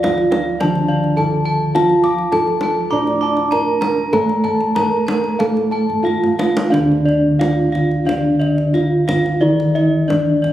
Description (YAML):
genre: Javanese gamelan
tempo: 89-105 BPM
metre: 4/4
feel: straight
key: D pelog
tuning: A4 = 440 Hz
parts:
  - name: gamelan-type bronze metallophone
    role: melody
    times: 0.0-10.5 s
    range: D4 to D5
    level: -20 LUFS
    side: right 1 dB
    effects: none
  - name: gamelan-type bronze metallophone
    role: accompaniment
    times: 0.0-10.5 s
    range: D3 to D4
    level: -20 LUFS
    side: right 1 dB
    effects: none
  - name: gamelan-type bossed gongs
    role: arpeggios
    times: 0.0-10.5 s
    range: D5 to D6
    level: -22 LUFS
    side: left 4 dB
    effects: none
  - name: gamelan-type bronze metallophone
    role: arpeggios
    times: 0.0-10.5 s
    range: D5 to D6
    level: -24 LUFS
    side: right 3 dB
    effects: none
  - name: gamelan-type bossed gongs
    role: bass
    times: 0.0-10.5 s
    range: D2 to A4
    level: -21 LUFS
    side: right 1 dB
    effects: none
  - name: kendang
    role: percussion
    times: 0.0-10.5 s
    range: none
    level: -26 LUFS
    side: equal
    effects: none
room: moderate recital hall reverb, RT60 1.7 s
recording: recorded on a phone in the room, studio reverb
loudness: -14 LUFS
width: side -12 dB against mid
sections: 0.0-6.7 A section; 6.7-10.5 B section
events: drum fill 5.9-6.7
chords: none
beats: 0.04 0.61 1.18 | 1.75 2.33 2.92 3.52 | 4.13 4.76 5.39 6.05 | 6.71 7.39 8.06 8.74 | 9.41 10.08